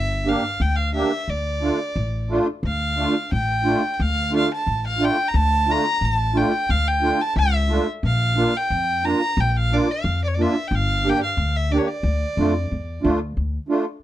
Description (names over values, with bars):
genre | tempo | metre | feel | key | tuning
klezmer | 89 BPM | 2/4 | straight | D harmonic minor | A4 = 440 Hz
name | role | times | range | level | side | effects
rich violin | melody | 0.0-13.0 s | C#5 to Bb5 | -23 LUFS | equal | none
upright bass | bass | 0.0-13.6 s | G1 to F2 | -22 LUFS | left 1 dB | none
musette accordion | accompaniment | 0.3-13.9 s | A3 to G4 | -21 LUFS | right 2 dB | none
room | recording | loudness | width
little or no reverb | dark, warm production | -19 LUFS | side -13 dB against mid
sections
0.0-2.6 A section; 2.6-13.4 A section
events
speeding up 0.0-14.0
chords
0.0 Gm; 1.3 Dm; 8.0 Bb; 10.7 Gm; 12.0 Dm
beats
0.61 | 1.29 1.97 | 2.65 3.32 | 4.00 4.68 | 5.35 6.03 | 6.70 7.37 | 8.04 8.71 | 9.38 10.05 | 10.71 11.38 | 12.04 12.70 | 13.36